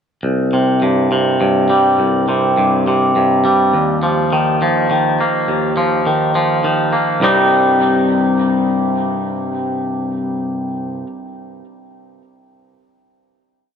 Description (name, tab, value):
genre	post-rock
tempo	103 BPM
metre	3/4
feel	straight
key	C minor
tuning	A4 = 436 Hz
part	twangy electric guitar	solo	0.2-11.1 s	C2 to Eb4	-13 LUFS	equal	spring reverb, digital delay
room	light reverb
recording	none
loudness	-13 LUFS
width	side -7 dB against mid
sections	0.2-7.2 A section; 7.2-10.7 final chord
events	none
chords	0.2 C5; 3.7 Ebsus2; 7.2 Cm